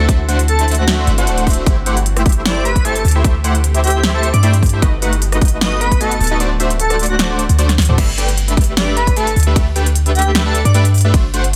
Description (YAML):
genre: future bass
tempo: 152 BPM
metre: 4/4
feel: swing 54% on 16ths, half-time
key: G major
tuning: A4 = 440 Hz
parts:
  - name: airy dreamy lead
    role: melody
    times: 0.0-10.8 s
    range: F#4 to D#5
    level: -23 LUFS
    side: equal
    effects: chorus, sidechain pumping, digital delay
  - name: shimmering ambient pad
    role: sustained chords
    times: 0.0-8.0 s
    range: D3 to G4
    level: -32 LUFS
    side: equal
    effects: none
  - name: big bright polysynth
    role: riff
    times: 0.0-11.4 s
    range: A3 to G5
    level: -22 LUFS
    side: equal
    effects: subtle chorus, sidechain pumping, digital delay
  - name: warm 808-style bass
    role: bass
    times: 0.0-11.6 s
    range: D1 to G2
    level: -18 LUFS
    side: equal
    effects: sidechain pumping
  - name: big-room dance drum kit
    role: drums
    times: 0.1-11.6 s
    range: crash cymbal, hi-hat, ride cymbal, rim click, snare drum, toms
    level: -22 LUFS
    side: equal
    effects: overdrive, studio reverb
  - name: electronic kick drum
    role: drums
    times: 0.1-11.2 s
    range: none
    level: -16 LUFS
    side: equal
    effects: studio reverb
room: little or no reverb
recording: dense, heavily limited modern master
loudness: -14 LUFS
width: mono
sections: 0.0-8.0 A section; 8.0-11.6 A section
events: drop 0.0-8.0, 8.0-11.6; kick drops out 6.4-8.0; drum fill 7.7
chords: 0.0 D9; 1.7 Am7/G; 4.8 B7/G; 6.4 D7; 8.0 G69